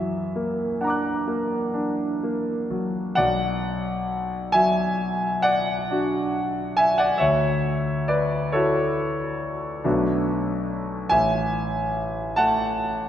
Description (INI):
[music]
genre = classical, impressionist solo piano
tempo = 41-48 BPM (dotted quarters)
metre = 9/8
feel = rubato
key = B dorian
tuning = A4 = 441 Hz
[part]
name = clear concert grand piano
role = solo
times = 0.0-13.1 s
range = A1 to F#6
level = -21 LUFS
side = equal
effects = none
[sound]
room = wet concert hall reverb, RT60 2.2 s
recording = none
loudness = -21 LUFS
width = side -10 dB against mid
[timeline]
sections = 0.0-3.2 A section; 3.2-13.1 B section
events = none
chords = 0.0 F#aug7; 3.2 Bm; 7.2 Dmaj9; 9.8 Bm9; 11.1 A5